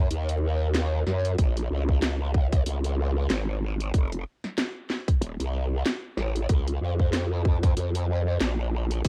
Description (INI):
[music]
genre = glitch hop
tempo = 94 BPM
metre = 4/4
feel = swing 57% on 16ths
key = unclear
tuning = A4 = 441 Hz
[part]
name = growl bass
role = bass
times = 0.0-9.1 s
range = Eb1 to Gb2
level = -28 LUFS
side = equal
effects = chorus
[part]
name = drum and bass drum kit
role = drums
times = 0.1-9.1 s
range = hi-hat, snare drum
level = -32 LUFS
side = equal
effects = cassette tape
[part]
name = electronic kick drum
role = drums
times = 1.4-9.1 s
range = none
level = -25 LUFS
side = equal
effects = cassette tape
[sound]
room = little or no reverb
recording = home recording on cassette, vinyl crackle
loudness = -26 LUFS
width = mono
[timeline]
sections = 0.0-9.1 A section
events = none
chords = none